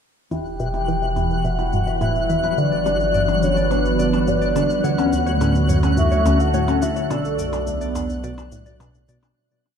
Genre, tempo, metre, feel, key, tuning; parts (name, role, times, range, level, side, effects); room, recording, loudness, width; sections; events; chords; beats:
ambient, sequencer-driven space music; 106 BPM; 4/4; straight; E dorian; A4 = 440 Hz
soft octave-layered synth lead; melody; 0.3-8.8 s; B4 to G5; -24 LUFS; left 1 dB; chorus, tremolo, ping-pong delay
phased analog pad; sustained chords; 0.8-9.4 s; D3 to B4; -24 LUFS; right 1 dB; phaser, chorus
mellow electric guitar; arpeggios; 0.3-9.4 s; C#4 to E5; -27 LUFS; moving between left 6 dB and right 2 dB; auto-pan, low-pass filter, ping-pong delay
analog pluck; riff; 0.3-9.2 s; D2 to G3; -26 LUFS; equal; chorus, phaser, ping-pong delay
warm sub bass; bass; 0.3-9.3 s; E1 to D2; -24 LUFS; equal
cabasa and percussion blips; percussion; 0.3-9.3 s; -38 LUFS; left 1 dB; overdrive, ping-pong delay
twinkling granular texture; texture; 0.7-9.4 s; F#3 to F#6; -28 LUFS; left 1 dB; built-in reverb
wet echo chamber reverb, RT60 2.1 s; echo-heavy mix, cassette tape; -17 LUFS; side -7 dB against mid
0.3-9.4 A section
fade-in on drum 0.3-9.4; filter sweep on synth arpeggio sound 0.3-9.4; filter sweep on clean electric guitar 0.3-9.4; fade-out 6.3-9.4
0.3 Emadd9; 2.6 G6; 4.8 Dmaj7; 7.1 Bm7
| 0.31 0.88 1.44 2.01 | 2.58 3.14 3.71 4.27 | 4.84 5.41 5.97 6.54 | 7.11 7.67 8.24 8.80